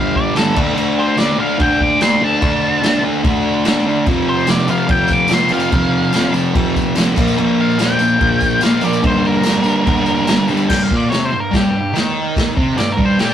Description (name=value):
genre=garage rock duo or trio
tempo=145 BPM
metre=4/4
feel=straight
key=G minor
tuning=A4 = 441 Hz
part: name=octave-fuzz lead guitar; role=melody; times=0.0-13.3 s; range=G4 to D6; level=-18 LUFS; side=left 1 dB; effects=distortion
part: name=thick fuzz guitar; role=riff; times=0.0-13.3 s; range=F2 to D4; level=-15 LUFS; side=equal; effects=distortion
part: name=vintage drum kit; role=drums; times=0.2-13.3 s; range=crash cymbal, kick drum, snare drum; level=-19 LUFS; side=equal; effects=none
part: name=tambourine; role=percussion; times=4.1-10.7 s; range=none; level=-32 LUFS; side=left 4 dB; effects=none
room=moderate small room reverb, RT60 0.5 s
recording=rough rehearsal-room recording, tube saturation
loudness=-13 LUFS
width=side -10 dB against mid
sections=0.0-10.7 A section; 10.7-13.3 B section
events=lead electric guitar solo 10.7-13.3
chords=0.0 G5; 0.6 D5; 4.1 F5; 7.2 Bb5; 9.0 Gm